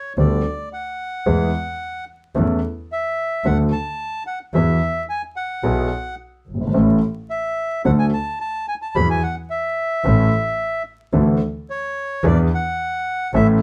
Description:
tango; 109 BPM; 4/4; rubato; A4 = 440 Hz
bandoneon; melody; 0.0-13.5 s; C#5 to B5; -26 LUFS; equal
warm grand piano; accompaniment; 0.2-13.6 s; F#1 to A4; -20 LUFS; equal
rich double bass; bass; 0.2-13.6 s; G1 to E2; -25 LUFS; equal
moderate studio reverb, RT60 0.6 s; band playing live in one room, vinyl crackle; -21 LUFS; mono
0.0-13.6 A section
0.2 Gadd9/D; 1.3 E; 2.4 A/E; 3.4 D; 4.5 Eadd9; 6.8 A; 7.9 D; 9.0 Eadd9; 10.0 A; 11.1 Dsus2; 12.2 E7

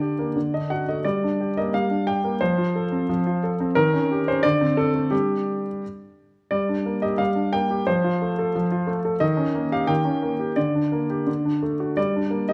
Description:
classical-period piano sonatina; 88 BPM; 2/4; straight; G minor; A4 = 444 Hz
clear grand piano; solo; 0.0-12.5 s; D3 to G5; -23 LUFS; equal
moderate recital hall reverb, RT60 1.4 s; dark, warm production; -23 LUFS; mono
0.0-6.5 A section; 6.5-12.5 B section
0.4 D; 1.0 Gm; 2.4 F; 3.8 Eb7; 4.4 D5; 5.1 G5; 6.5 Gm; 7.9 F; 9.2 Eb7; 10.6 Gm/D; 11.3 D; 12.0 Gm

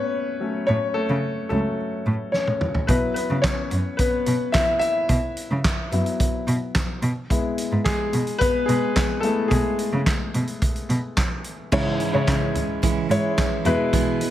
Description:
piano-driven pop; 109 BPM; 4/4; straight; A4 = 440 Hz
clear concert grand piano; accompaniment; 0.0-14.3 s; G#2 to E5; -23 LUFS; left 2 dB
warm cello; bass; 0.7-13.7 s; C#2 to C#3; -24 LUFS; right 1 dB
loose indie drum kit; drums; 2.3-14.3 s; crash cymbal, handclaps, hi-hat, kick drum, snare drum, toms; -24 LUFS; right 1 dB
picked steel-string acoustic guitar; riff; 11.7-14.3 s; E2 to E4; -26 LUFS; right 8 dB
moderate plate reverb, RT60 1.5 s, small room ambience; dreamy mix soaked in reverb; -20 LUFS; side -12 dB against mid
0.0-11.7 A section; 11.7-14.3 B section
grand piano solo 0.0-11.7; drum fill 2.3-2.9
0.0 F#m; 2.9 Bsus4; 7.0 E; 11.7 C#m; 13.7 E

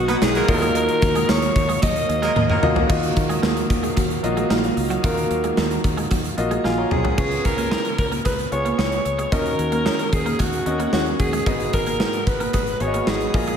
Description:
1980s-style pop; 112 BPM; 4/4; straight; Eb minor; A4 = 440 Hz
breathy alto saxophone; melody; 0.0-2.6, 6.7-13.6 s; F4 to Eb5; -23 LUFS; equal; slapback echo
clear grand piano; accompaniment; 0.0-13.6 s; Ab2 to Bb5; -25 LUFS; left 1 dB; slapback echo
string machine, full ensemble; sustained chords; 0.0-7.1 s; Eb3 to F5; -30 LUFS; right 1 dB
fingered electric bass; bass; 0.0-13.6 s; Ab1 to Eb2; -27 LUFS; equal
twelve-string electric guitar; riff; 0.1-13.6 s; Gb3 to Eb4; -28 LUFS; right 3 dB; ensemble chorus
clear horn section; stabs; 0.1-2.9 s; Gb3 to B4; -27 LUFS; right 2 dB; tape echo
gated 80s drum kit; drums; 0.1-13.6 s; crash cymbal, hi-hat, kick drum, snare drum, tambourine, toms; -23 LUFS; equal
wet lush hall reverb, RT60 1.9 s; big arena sound; -18 LUFS; side -8 dB against mid
0.0-2.9 A section; 2.9-7.2 B section; 7.2-13.6 C section
drum fill 2.4-2.9, 6.6-7.2
0.5 Ebmadd9; 7.2 Db7; 9.3 Ebm7; 11.5 Abm7

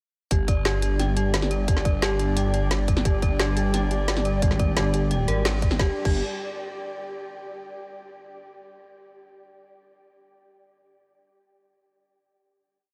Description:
dark technical drum and bass; 175 BPM; 4/4; straight; A4 = 440 Hz
dark analog pad; sustained chords; 0.7-6.0 s; G3 to D5; -34 LUFS; equal; chorus, sidechain pumping
dark detuned synth bell; arpeggios; 0.3-6.2 s; G4 to G5; -34 LUFS; equal; chorus, sidechain pumping, tape echo
phased detuned saw bass; bass; 0.3-6.2 s; G1 to Ab1; -27 LUFS; equal; phaser, overdrive
drum and bass drum kit; drums; 0.3-6.1 s; crash cymbal, hi-hat, snare drum; -31 LUFS; equal
electronic kick drum; drums; 0.3-6.1 s; -25 LUFS; equal
ethereal airy pad; texture; 1.5-7.1 s; G4 to G5; -38 LUFS; equal; ensemble chorus, built-in reverb, sidechain pumping
growling FM bass; bass; 4.4-5.3 s; G1 to Ab1; -26 LUFS; equal
light reverb; -24 LUFS; mono
0.3-5.8 drop; 5.8-7.2 final chord
drop 0.3-5.8; band accent 5.5
0.3 G5

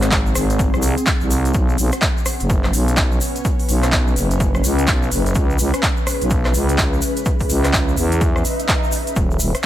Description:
bass house; 126 BPM; 4/4; swing 62% on 16ths; A4 = 440 Hz
dark analog pad; sustained chords; 0.1-9.7 s; Ab3 to Bb5; -31 LUFS; left 1 dB
growling FM bass; bass; 0.0-9.5 s; Eb1 to Fb2; -18 LUFS; equal; overdrive, sidechain pumping
big-room dance drum kit; drums; 0.0-9.6 s; handclaps, hi-hat, rim click; -23 LUFS; equal; overdrive
egg shaker; percussion; 0.0-9.6 s; -30 LUFS; left 2 dB
ethereal airy pad; texture; 0.0-9.7 s; C4 to Fb5; -26 LUFS; left 1 dB; ensemble chorus, built-in reverb, tremolo, sidechain pumping
electronic kick drum; drums; 0.1-9.3 s; -20 LUFS; equal; overdrive
swell; sound effects; 8.5-9.2 s; -30 LUFS; right 1 dB
digital ambience; -15 LUFS; side -13 dB against mid
0.0-9.7 A section
swell 8.5-9.2
0.0 Ab7; 1.5 Bsus2; 5.4 Dbm7

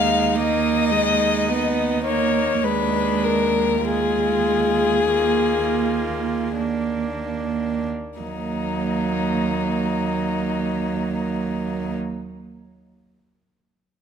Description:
classical, slow romantic movement for string quartet; 35-55 BPM; 4/4; rubato; Eb minor; A4 = 440 Hz
warm violin; melody; 0.0-11.9 s; Eb4 to F5; -22 LUFS; left 6 dB
dark violin; second line; 0.0-12.0 s; Bb3 to F4; -29 LUFS; left 1 dB
warm viola; accompaniment; 0.0-12.0 s; Gb3 to Cb4; -25 LUFS; right 6 dB
warm cello; bass; 0.0-11.9 s; Eb2; -26 LUFS; right 7 dB
moderate recital hall reverb, RT60 1.8 s; close, detailed microphones; -19 LUFS; side -8 dB against mid
0.0-8.2 A section; 8.2-14.0 B section
slowing down 0.0-8.2
0.0 Abm/Eb; 2.6 Bb7/Eb; 8.2 Ebm

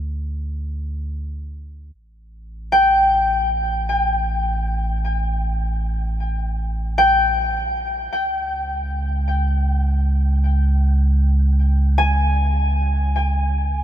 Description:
ambient; free time; A4 = 440 Hz
warm sub bass; bass; 0.0-13.8 s; A1 to D2; -20 LUFS; equal
concert harp; arpeggios; 2.7-13.8 s; G5 to G#5; -20 LUFS; left 1 dB; tape echo
moderate huge ambient reverb, RT60 7.9 s; -17 LUFS; side -11 dB against mid
0.0-13.8 A section
fade-in on sub bass 0.0-13.8
0.0 N.C.; 1.9 Gsus2/A; 8.1 C#5

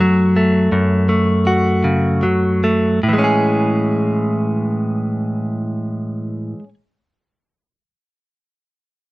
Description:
folk; 49-56 BPM (dotted quarters); 6/8; straight; A major; A4 = 441 Hz
direct-recorded clean electric guitar; accompaniment; 0.0-6.7 s; F#2 to G#4; -14 LUFS; equal
light reverb; close, detailed microphones; -15 LUFS; side -19 dB against mid
0.0-3.0 A section; 3.0-7.9 B section
slowing down 0.0-3.0
0.0 F#m; 3.0 Amaj7

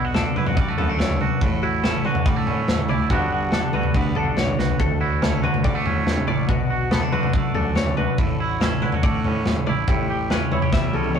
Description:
math rock and midwest emo; 142 BPM; 4/4; straight; D major; A4 = 440 Hz
twangy electric guitar; accompaniment; 0.0-11.2 s; D2 to G4; -25 LUFS; right 4 dB
twelve-string electric guitar; arpeggios; 0.0-11.2 s; F#4 to E5; -28 LUFS; left 6 dB; tape echo
fuzz fingered electric bass; bass; 0.0-11.2 s; A1 to D3; -28 LUFS; equal; overdrive
modern studio drum kit; drums; 0.1-11.2 s; kick drum, snare drum, toms; -21 LUFS; left 1 dB
moderate studio reverb, RT60 0.6 s; rough rehearsal-room recording, warm saturation; -19 LUFS; side -7 dB against mid
0.0-11.2 A section
drum fill 4.6, 10.7-11.2
0.0 Bm7; 1.4 Dmaj7/A; 3.1 Gmaj7; 4.8 Dmaj7; 6.5 Bm7; 8.2 Dmaj7/A; 9.9 A7

